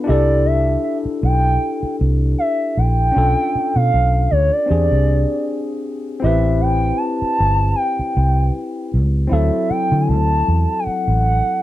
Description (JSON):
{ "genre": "R&B, neo-soul", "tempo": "78 BPM", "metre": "4/4", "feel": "swing 54% on 16ths", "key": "unclear", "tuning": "A4 = 441 Hz", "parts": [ { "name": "overdriven tine electric piano", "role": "accompaniment", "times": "0.0-11.6 s", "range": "F#3 to B4", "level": "-22 LUFS", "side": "left 3 dB", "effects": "lush chorus" }, { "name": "gliding portamento lead", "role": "melody", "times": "0.1-11.6 s", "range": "C#5 to A5", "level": "-19 LUFS", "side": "right 1 dB", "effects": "chorus" }, { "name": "vintage muted fingered electric bass", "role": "bass", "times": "0.1-11.4 s", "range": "G1 to D3", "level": "-16 LUFS", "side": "equal", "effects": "none" } ], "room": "little or no reverb", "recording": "dark, warm production", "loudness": "-15 LUFS", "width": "side -14 dB against mid", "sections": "0.0-11.6 A section", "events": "none", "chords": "0.1 C6; 3.1 Bm7b5; 4.7 E7#9b13 (rootless); 6.2 Am9; 9.3 D9" }